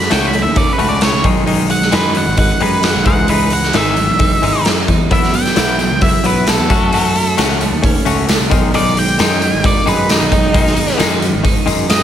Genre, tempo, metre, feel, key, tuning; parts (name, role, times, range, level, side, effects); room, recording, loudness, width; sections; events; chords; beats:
indie rock; 132 BPM; 4/4; straight; A4 = 439 Hz
octave-fuzz lead guitar; melody; 0.0-12.0 s; D#4 to B5; -18 LUFS; right 1 dB; distortion, analog delay
clean electric guitar; riff; 0.0-12.0 s; D#3 to F#4; -20 LUFS; left 8 dB
clean electric guitar; riff; 0.0-12.0 s; D#3 to E4; -21 LUFS; right 9 dB; lush chorus
fuzz picked electric bass; bass; 0.0-12.0 s; G#1 to F#2; -19 LUFS; equal; overdrive
raw garage drum kit; drums; 0.0-12.0 s; hi-hat, kick drum, snare drum; -15 LUFS; equal
tambourine; percussion; 5.1-12.0 s; -30 LUFS; left 8 dB
light reverb, studio ambience; -11 LUFS; side -10 dB against mid
0.0-12.0 A section
lead electric guitar solo 0.0-12.0
0.0 F#m; 1.2 B6; 3.1 C#madd9; 5.1 Esus2; 6.7 F#m; 8.5 B6
0.12 0.57 1.02 | 1.48 1.93 2.39 2.84 | 3.30 3.75 4.21 4.66 | 5.12 5.57 6.03 6.48 | 6.93 7.39 7.84 8.29 | 8.74 9.20 9.65 10.10 | 10.55 11.00 11.45 11.90